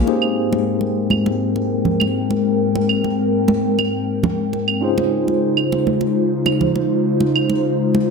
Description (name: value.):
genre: sunset chillout.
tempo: 101 BPM.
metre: 4/4.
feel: straight.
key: Ab major.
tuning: A4 = 439 Hz.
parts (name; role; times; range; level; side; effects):
bright tine electric piano; accompaniment; 0.0-8.1 s; Bb3 to C5; -24 LUFS; left 1 dB; medium stereo tremolo, auto-pan, ping-pong delay.
airy breathy pad; sustained chords; 0.0-8.1 s; Ab2 to G5; -18 LUFS; left 2 dB; chorus.
congas; percussion; 0.1-8.1 s; none; -23 LUFS; right 4 dB; none.
claves; drums; 0.2-7.5 s; none; -23 LUFS; right 8 dB; low-pass filter on perc, low-pass filter on snare.
room: wet plate reverb, RT60 1.3 s, digital ambience.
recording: bright 1980s-style digital production.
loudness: -16 LUFS.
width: side -4 dB against mid.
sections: 0.1-8.1 A section.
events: filter sweep on analog synth pad 0.1-8.1.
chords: 0.1 Abmaj9; 4.8 Dbmaj7.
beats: | 0.07 0.67 1.26 1.85 | 2.45 3.04 3.64 4.23 | 4.83 5.42 6.01 6.61 | 7.20 7.80.